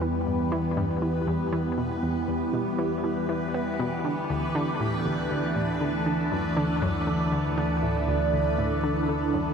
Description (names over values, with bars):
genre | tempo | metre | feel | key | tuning
ambient, sequencer-driven space music | 119 BPM | 4/4 | straight | unclear | A4 = 440 Hz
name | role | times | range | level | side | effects
phased analog pad | sustained chords | 0.0-9.5 s | E3 to D5 | -27 LUFS | right 2 dB | phaser, chorus
analog pluck | riff | 0.0-9.5 s | D2 to B3 | -29 LUFS | left 1 dB | chorus, ping-pong delay
fat analog bass | bass | 0.0-9.5 s | D2 to E2 | -34 LUFS | left 1 dB | none
bubbling stepped-filter texture | texture | 0.0-9.5 s | B3 to B4 | -35 LUFS | left 2 dB | chorus, built-in reverb
room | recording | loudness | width
wet cathedral reverb, RT60 6.2 s | in a vast, echoing space | -24 LUFS | side -6 dB against mid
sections
0.0-9.5 A section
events
none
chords
0.0 Em; 4.0 Dsus2